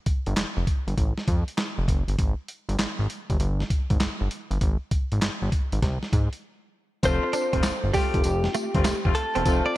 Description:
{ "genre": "R&B, new jack swing", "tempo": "99 BPM", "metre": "4/4", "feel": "swing 66% on 16ths", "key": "F major", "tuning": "A4 = 440 Hz", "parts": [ { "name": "dusty soul sampler-style drum kit", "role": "drums", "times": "0.1-9.6 s", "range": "handclaps, hi-hat, kick drum, snare drum, tambourine", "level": "-25 LUFS", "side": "equal", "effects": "gated reverb" }, { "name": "fat analog bass", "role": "bass", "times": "0.3-9.6 s", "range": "E1 to Ab2", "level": "-25 LUFS", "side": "equal", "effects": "none" }, { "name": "FM electric piano", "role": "accompaniment", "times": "7.0-9.8 s", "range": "C4 to A4", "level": "-32 LUFS", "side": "left 3 dB", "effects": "chorus" }, { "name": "mellow horn section", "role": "stabs", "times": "7.0-9.7 s", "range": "A3 to F4", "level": "-32 LUFS", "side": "left 4 dB", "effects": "none" }, { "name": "direct-recorded clean electric guitar", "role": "melody", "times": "7.1-9.8 s", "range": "G4 to D5", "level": "-27 LUFS", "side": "equal", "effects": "phaser" }, { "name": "direct-recorded clean electric guitar", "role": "riff", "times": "7.2-9.7 s", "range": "G3 to D4", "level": "-31 LUFS", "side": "right 6 dB", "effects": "ensemble chorus" } ], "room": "light reverb", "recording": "bright 1980s-style digital production", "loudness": "-23 LUFS", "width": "side -16 dB against mid", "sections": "0.0-7.0 A section; 7.0-9.8 B section", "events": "break 6.4-7.0", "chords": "0.0 F; 2.2 Abmaj7(no3); 7.0 F" }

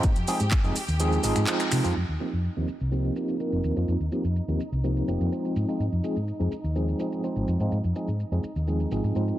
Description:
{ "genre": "filtered disco house", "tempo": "125 BPM", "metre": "4/4", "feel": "straight", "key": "unclear", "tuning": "A4 = 442 Hz", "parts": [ { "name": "overdriven tine electric piano", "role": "accompaniment", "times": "0.0-9.4 s", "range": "F3 to C5", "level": "-28 LUFS", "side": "right 1 dB", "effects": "medium tremolo, phaser, sidechain pumping, low-pass filter" }, { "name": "clear studio string section", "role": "sustained chords", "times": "0.0-9.4 s", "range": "Eb4 to G5", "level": "-39 LUFS", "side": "right 2 dB", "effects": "sidechain pumping, low-pass filter" }, { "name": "hollow-body short-scale fingered electric bass", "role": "bass", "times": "0.0-9.3 s", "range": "F1 to C3", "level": "-26 LUFS", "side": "equal", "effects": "sidechain pumping, low-pass filter" }, { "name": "electronic kick drum", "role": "drums", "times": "0.0-0.6 s", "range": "none", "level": "-23 LUFS", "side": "equal", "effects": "none" }, { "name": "house drum kit", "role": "drums", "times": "0.0-9.4 s", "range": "finger snaps, handclaps, hi-hat, shaker", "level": "-32 LUFS", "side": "right 1 dB", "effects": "sidechain pumping on hats, low-pass filter on hats, sidechain pumping on perc, low-pass filter on perc, low-pass filter on snare, low-pass filter on room" }, { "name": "maracas", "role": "percussion", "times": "0.0-1.9 s", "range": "none", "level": "-42 LUFS", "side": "left 5 dB", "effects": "none" } ], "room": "light reverb", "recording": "none", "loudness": "-24 LUFS", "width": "side -14 dB against mid", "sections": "0.0-2.0 A section; 2.0-9.4 B section", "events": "kick drops out 1.0-2.0; band accent 1.5; filter sweep 2.0-9.4", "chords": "0.0 Ab6; 2.0 F9sus4; 5.6 Ab6" }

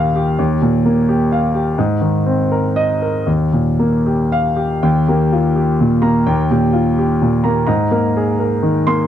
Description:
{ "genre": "neoclassical minimalist piano", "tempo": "110-132 BPM", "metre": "3/4", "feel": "rubato", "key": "Eb major", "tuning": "A4 = 440 Hz", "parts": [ { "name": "clear concert grand piano", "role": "solo", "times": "0.0-9.1 s", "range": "Eb2 to C6", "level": "-13 LUFS", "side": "equal", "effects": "none" } ], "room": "little or no reverb", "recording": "dry, close 1970s-style studio recording", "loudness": "-13 LUFS", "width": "side -10 dB against mid", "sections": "0.0-4.8 A section; 4.8-9.1 A section", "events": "none", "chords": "0.0 Ebadd9; 1.8 Abadd9; 3.3 Ebadd9; 7.7 Abadd9" }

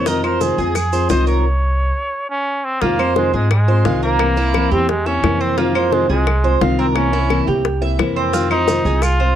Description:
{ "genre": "latin, Cuban son and guajira", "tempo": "174 BPM", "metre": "4/4", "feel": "straight", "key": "F minor", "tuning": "A4 = 443 Hz", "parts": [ { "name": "breathy trumpet", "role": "melody", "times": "0.0-9.4 s", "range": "Ab3 to Db5", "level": "-21 LUFS", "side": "right 1 dB", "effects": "none" }, { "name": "fingerpicked steel-string acoustic guitar", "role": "accompaniment", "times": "0.0-9.4 s", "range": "C3 to F4", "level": "-20 LUFS", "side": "left 4 dB", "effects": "none" }, { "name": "Cuban tres", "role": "arpeggios", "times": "0.0-9.4 s", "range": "Eb4 to F5", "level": "-21 LUFS", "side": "right 7 dB", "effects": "none" }, { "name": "upright bass", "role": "bass", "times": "0.0-9.3 s", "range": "C2 to Ab2", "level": "-19 LUFS", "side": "equal", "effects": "none" }, { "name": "bongos", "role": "percussion", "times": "0.1-9.2 s", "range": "none", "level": "-22 LUFS", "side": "left 8 dB", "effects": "none" }, { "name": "maracas", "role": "percussion", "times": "0.1-1.4, 8.3-9.2 s", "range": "none", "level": "-33 LUFS", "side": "right 6 dB", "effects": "none" }, { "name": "claves", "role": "percussion", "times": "0.2-0.9, 3.0-9.2 s", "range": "none", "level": "-27 LUFS", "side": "left 9 dB", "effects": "none" } ], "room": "little or no reverb", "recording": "dry, close 1970s-style studio recording", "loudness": "-14 LUFS", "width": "side -10 dB against mid", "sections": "0.0-2.8 A section; 2.8-9.4 A section", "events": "stop 1.4-2.8", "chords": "0.1 Fm7; 1.4 N.C.; 2.8 Fm7; 4.2 C7b9; 5.6 Fm7; 7.0 C7b9; 8.3 Fm7" }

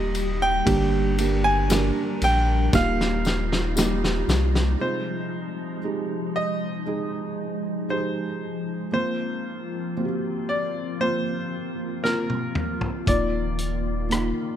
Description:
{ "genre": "pop ballad", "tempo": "58 BPM", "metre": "4/4", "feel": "straight", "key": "unclear", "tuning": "A4 = 437 Hz", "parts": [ { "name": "bright grand piano", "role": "melody", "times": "0.0-14.6 s", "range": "Bb4 to Ab5", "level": "-28 LUFS", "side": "equal", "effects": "none" }, { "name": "felt-muted upright piano", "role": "accompaniment", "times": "0.0-14.6 s", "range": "G2 to Bb4", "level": "-28 LUFS", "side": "right 3 dB", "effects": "none" }, { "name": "glassy FM pad", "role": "sustained chords", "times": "0.0-14.6 s", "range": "Eb3 to Bb4", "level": "-31 LUFS", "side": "left 1 dB", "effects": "ensemble chorus, built-in reverb" }, { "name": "saturated sub bass", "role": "bass", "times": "0.0-4.8, 13.1-14.3 s", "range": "Eb1 to C2", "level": "-25 LUFS", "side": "left 1 dB", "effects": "none" }, { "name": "loose indie drum kit", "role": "drums", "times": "0.1-4.8, 12.0-14.4 s", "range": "hi-hat, kick drum, ride cymbal, rim click, snare drum, toms", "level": "-27 LUFS", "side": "left 1 dB", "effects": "none" }, { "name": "tambourine", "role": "percussion", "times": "0.1-4.5 s", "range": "none", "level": "-36 LUFS", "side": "left 6 dB", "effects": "none" } ], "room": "little or no reverb", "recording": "none", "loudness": "-22 LUFS", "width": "side -10 dB against mid", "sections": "0.0-4.8 A section; 4.8-14.6 B section", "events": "drum fill 2.7-4.8, 12.0-13.1", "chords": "0.0 Ebadd9; 0.7 Gm; 2.7 Ebadd9; 4.8 Fm7; 8.9 Bbsus2/F; 13.1 Ebsus2" }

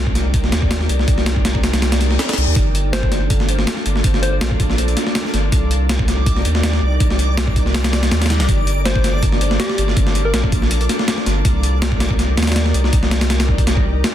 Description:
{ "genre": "drum and bass, jungle", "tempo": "162 BPM", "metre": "4/4", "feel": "swing 54% on 16ths", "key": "unclear", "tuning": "A4 = 438 Hz", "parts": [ { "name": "ethereal airy pad", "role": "sustained chords", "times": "0.0-14.1 s", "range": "Bb3 to D5", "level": "-26 LUFS", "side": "right 1 dB", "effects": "ensemble chorus, built-in reverb" }, { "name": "saturated sub bass", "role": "bass", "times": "0.0-14.0 s", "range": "G1 to Eb2", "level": "-18 LUFS", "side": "equal", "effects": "none" }, { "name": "breakbeat sampler-style drum kit", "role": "drums", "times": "0.1-14.1 s", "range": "hi-hat, kick drum, snare drum", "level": "-18 LUFS", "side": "equal", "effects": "overdrive" }, { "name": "reverse cymbal", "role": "sound effects", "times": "2.0-2.6 s", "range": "none", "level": "-25 LUFS", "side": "left 5 dB", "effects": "none" }, { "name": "backwards swelling texture", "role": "texture", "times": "3.6-14.1 s", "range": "D5 to D6", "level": "-29 LUFS", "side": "left 1 dB", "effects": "built-in reverb" }, { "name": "soft struck synth lead", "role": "melody", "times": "2.9-4.4, 8.9-10.4 s", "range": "G4 to C5", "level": "-27 LUFS", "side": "left 2 dB", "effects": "chorus, dub echo" } ], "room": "little or no reverb", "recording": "dense, heavily limited modern master", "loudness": "-14 LUFS", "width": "side -11 dB against mid", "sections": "0.0-14.1 A section", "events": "kick drops out 1.8-2.6; reverse cymbal 2.0-2.6", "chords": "0.0 Cm9; 2.6 Gm9; 5.5 Cm9; 8.5 Gm9; 11.4 Cm9" }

